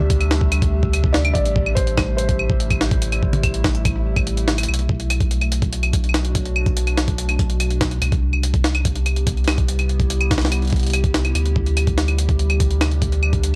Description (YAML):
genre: IDM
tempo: 144 BPM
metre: 4/4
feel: straight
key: B phrygian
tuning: A4 = 440 Hz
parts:
  - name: felt-muted upright piano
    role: melody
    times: 0.0-4.2 s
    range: C5 to D5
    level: -30 LUFS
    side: equal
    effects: tape echo
  - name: warbly tape-like pad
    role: sustained chords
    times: 0.0-13.6 s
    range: B2 to G4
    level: -31 LUFS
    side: equal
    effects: chorus, built-in reverb, phaser, sidechain pumping
  - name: warm sub bass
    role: bass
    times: 0.0-13.6 s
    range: A1 to D2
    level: -22 LUFS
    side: equal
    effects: tube saturation
  - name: jungle sampler-style drum kit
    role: drums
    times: 0.0-13.5 s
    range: claves, hi-hat, snare drum, toms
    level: -25 LUFS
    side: equal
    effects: none
  - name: bubbling stepped-filter texture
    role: texture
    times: 0.0-4.7 s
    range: E5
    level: -41 LUFS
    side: equal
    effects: chorus, built-in reverb, sidechain pumping
  - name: electronic kick drum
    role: drums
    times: 0.1-13.4 s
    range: none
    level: -23 LUFS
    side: equal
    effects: none
room: digital ambience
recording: dry, gritty hardware recording, cassette tape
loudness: -19 LUFS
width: mono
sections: 0.0-4.7 A section; 4.7-13.6 B section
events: kick drops out 4.3-4.7; drum fill 4.5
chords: 0.0 D7sus4; 1.4 Am7; 4.7 Bm7; 8.0 Cmaj7; 11.4 D7sus4